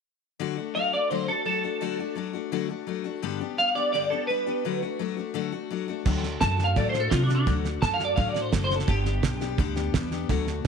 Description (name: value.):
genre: rockabilly.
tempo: 170 BPM.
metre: 4/4.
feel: straight.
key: D mixolydian.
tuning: A4 = 441 Hz.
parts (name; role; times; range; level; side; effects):
picked steel-string acoustic guitar; accompaniment; 0.4-10.7 s; G2 to G4; -30 LUFS; left 11 dB; none.
clean electric guitar; melody; 0.7-9.9 s; D4 to A5; -26 LUFS; right 1 dB; ensemble chorus, tape echo.
upright bass; bass; 6.1-10.7 s; F#1 to C3; -27 LUFS; right 1 dB; none.
cloth-damped thuddy drum kit; drums; 6.1-10.7 s; crash cymbal, hi-hat, kick drum, snare drum; -27 LUFS; right 4 dB; none.
room: light reverb, small room reverb.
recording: 1960s-style stereo.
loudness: -24 LUFS.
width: side -6 dB against mid.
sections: 0.4-6.1 A section; 6.1-10.7 B section.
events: none.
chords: 0.4 D; 3.2 G; 4.6 D; 8.9 G.